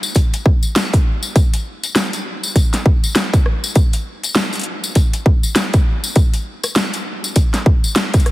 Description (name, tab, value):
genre	glitch hop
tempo	100 BPM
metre	4/4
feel	swing 60% on 16ths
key	none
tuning	none
part	tambourine	percussion	0.0-8.2 s	none	-25 LUFS	left 3 dB	none
part	dubstep drum kit	drums	0.2-8.3 s	hi-hat, rim click, snare drum	-19 LUFS	equal	none
part	electronic kick drum	drums	0.2-8.2 s	none	-13 LUFS	equal	none
room	light reverb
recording	heavily compressed radio sound, multiband compression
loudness	-14 LUFS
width	side -18 dB against mid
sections	0.0-8.3 A section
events	none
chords	none